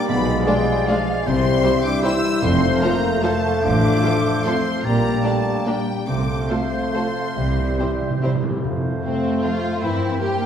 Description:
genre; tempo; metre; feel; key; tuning
classical; 134-167 BPM; 3/4; rubato; F major; A4 = 440 Hz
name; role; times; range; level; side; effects
warm symphonic violin section; melody; 0.0-10.5 s; C5 to E6; -30 LUFS; left 4 dB; none
mellow hollow concert flute; second line; 0.0-10.5 s; E5 to G5; -31 LUFS; left 1 dB; none
warm oboe; second line; 0.0-10.5 s; C5 to D5; -30 LUFS; right 2 dB; none
warm bassoon; accompaniment; 0.0-10.5 s; G3 to Bb3; -27 LUFS; right 2 dB; none
mellow French horn section; sustained chords; 0.0-10.5 s; C3 to E4; -25 LUFS; left 5 dB; none
warm trombone section; sustained chords; 0.0-8.4 s; E3 to Bb3; -28 LUFS; right 1 dB; none
concert harp; arpeggios; 0.0-10.5 s; F2 to D6; -29 LUFS; left 4 dB; none
rich symphonic double bass section; bass; 0.1-10.1 s; F1 to G2; -27 LUFS; right 2 dB; none
warm studio cello section; bass; 0.1-10.5 s; F2 to G3; -26 LUFS; right 1 dB; none
warm symphonic violin section; second line; 0.5-10.5 s; C4 to D5; -29 LUFS; left 2 dB; none
warm symphonic viola section; accompaniment; 0.5-10.5 s; F3 to F4; -28 LUFS; right 2 dB; none
timpani; percussion; 2.4-3.0, 7.4-9.2 s; F2 to C3; -27 LUFS; right 2 dB; none
room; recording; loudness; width
wet scoring stage reverb, RT60 1.9 s; heard from further back in the room; -17 LUFS; side -8 dB against mid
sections
0.0-8.6 A section; 8.6-10.5 B section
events
timpani fill 7.4-8.6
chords
0.1 Bdim7; 1.3 C; 2.4 F; 3.6 F/A; 4.8 Gm/Bb; 6.1 F/C; 7.4 C; 8.6 F; 9.8 C7/G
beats
| 0.09 0.47 0.89 | 1.27 1.65 2.04 | 2.42 2.82 3.23 | 3.65 4.04 4.46 | 4.85 5.24 5.67 | 6.08 6.50 6.95 | 7.37 7.79 8.23 | 8.64 9.03 9.44 | 9.82 10.20

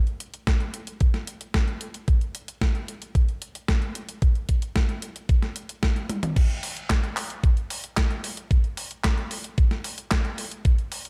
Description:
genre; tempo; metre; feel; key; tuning
italo disco; 112 BPM; 4/4; straight; none; none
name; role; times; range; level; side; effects
clean 12-bit digital drum machine; drums; 0.1-11.1 s; crash cymbal, handclaps, hi-hat, snare drum, toms; -32 LUFS; equal; gated reverb
electronic kick drum; drums; 0.5-10.8 s; none; -23 LUFS; equal; none
room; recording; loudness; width
little or no reverb; none; -26 LUFS; mono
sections
0.0-6.4 A section; 6.4-11.1 B section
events
drum fill 6.1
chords
none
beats
0.47 1.01 1.54 | 2.08 2.61 3.15 3.69 | 4.22 4.76 5.29 5.83 | 6.36 6.90 7.43 7.97 | 8.51 9.04 9.58 10.11 | 10.65

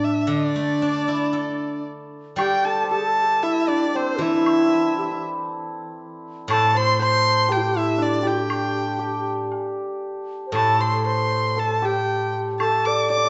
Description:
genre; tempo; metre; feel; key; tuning
chinese traditional, Chinese chamber ensemble; 58 BPM; 2/4; rubato; D shang mode; A4 = 440 Hz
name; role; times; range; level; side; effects
rich erhu; melody; 0.0-13.3 s; C5 to D6; -25 LUFS; equal; none
bright reedy low xiao; second line; 0.0-13.3 s; D4 to D5; -27 LUFS; equal; none
steel-string zither; accompaniment; 0.0-13.3 s; A2 to A4; -30 LUFS; equal; none
hammered dulcimer; second line; 2.4-13.3 s; C4 to D5; -28 LUFS; equal; none
woodblock; percussion; 2.4-12.8 s; none; -34 LUFS; equal; none
room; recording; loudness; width
wet recital hall reverb, RT60 1.5 s; recorded in a church or concert hall, nothing above 7.9 kHz; -22 LUFS; mono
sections
0.0-2.4 A section; 2.4-13.3 B section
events
none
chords
none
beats
| 0.29 1.33 | 2.38 3.43 | 4.47 5.50 | 6.51 7.50 | 8.50 9.51 | 10.55 11.59 | 12.61

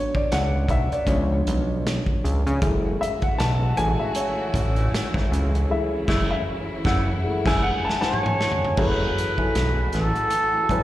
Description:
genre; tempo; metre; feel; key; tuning
R&B, neo-soul; 78 BPM; 4/4; swing 58% on 16ths; F# minor; A4 = 440 Hz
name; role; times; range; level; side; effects
dark upright piano; accompaniment; 0.0-10.8 s; E#3 to A5; -26 LUFS; left 2 dB; slapback echo
warm soul drum kit; drums; 0.1-10.8 s; crash cymbal, hi-hat, kick drum, snare drum, toms; -26 LUFS; equal; none
fat analog bass; bass; 0.3-10.8 s; F#1 to C#3; -22 LUFS; equal; none
warm studio string section; sustained chords; 2.6-10.8 s; E3 to F#4; -34 LUFS; equal; none
edgy saxophone section; stabs; 4.2-7.6 s; C#3 to E4; -30 LUFS; equal; slapback echo
trumpet with plunger mute; melody; 8.0-10.8 s; A4 to C#5; -24 LUFS; right 1 dB; slapback echo
room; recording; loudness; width
light reverb; live gig heard through the venue's PA, recital hall reverb; -20 LUFS; side -14 dB against mid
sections
0.0-8.8 A section; 8.8-10.8 B section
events
upright piano solo 0.0-8.8; band accent 5.7-8.8; drum fill 7.2-8.8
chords
0.0 G#m7b5 (rootless); 1.1 C#7b9; 2.6 F#m9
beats
0.31 1.08 1.85 | 2.62 3.39 4.16 4.92 | 5.69 6.46 7.23 8.00 | 8.77 9.54 10.31

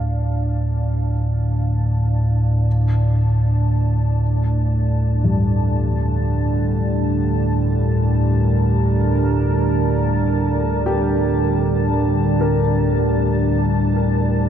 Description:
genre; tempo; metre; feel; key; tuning
dark ambient drone; free time; none; none; unclear; A4 = 440 Hz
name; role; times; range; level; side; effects
deep dark ambient pad; sustained chords; 0.0-14.5 s; D3 to A5; -22 LUFS; right 1 dB; chorus, built-in reverb
dark baby grand piano; arpeggios; 0.0-14.5 s; G2 to Bb4; -25 LUFS; left 3 dB; ping-pong delay
deep rumbling drone; drone; 0.0-14.5 s; D2 to A2; -18 LUFS; equal; built-in reverb
bronze singing bowl; texture; 0.0-14.5 s; none; barely audible; none; none
room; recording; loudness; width
wet cathedral reverb, RT60 7.1 s; none; -16 LUFS; side -9 dB against mid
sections
0.0-14.5 A section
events
fade-in on ambient pad 0.0-14.5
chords
0.0 Dm; 2.7 Gm7/D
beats
free time

